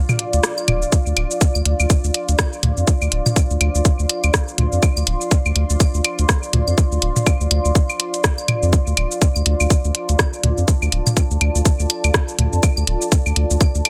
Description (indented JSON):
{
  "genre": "minimal techno",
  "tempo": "123 BPM",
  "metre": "4/4",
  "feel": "swing 58% on 16ths",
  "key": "D minor",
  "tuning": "A4 = 442 Hz",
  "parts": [
    { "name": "deep dark ambient pad", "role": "texture", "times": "0.0-13.9 s", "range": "F4 to C6", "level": "-28 LUFS", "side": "equal", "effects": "chorus, built-in reverb, sidechain pumping" },
    { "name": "garage drum kit", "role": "drums", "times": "0.1-13.9 s", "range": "hi-hat, rim click, shaker", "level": "-24 LUFS", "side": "equal", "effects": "none" },
    { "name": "electronic toms and claves", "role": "percussion", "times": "0.1-13.9 s", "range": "none", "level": "-25 LUFS", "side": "equal", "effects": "dub echo" },
    { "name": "saturated sub bass", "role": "bass", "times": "0.3-13.8 s", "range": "D1 to F2", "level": "-21 LUFS", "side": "equal", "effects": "tube saturation, sidechain pumping" },
    { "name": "electronic kick drum", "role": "drums", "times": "0.9-13.7 s", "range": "none", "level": "-18 LUFS", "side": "equal", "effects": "none" }
  ],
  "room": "light reverb",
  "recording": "none",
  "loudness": "-18 LUFS",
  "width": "mono",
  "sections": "0.0-13.9 A section",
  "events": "kick drops out 0.4-0.9",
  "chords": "0.0 Dm7"
}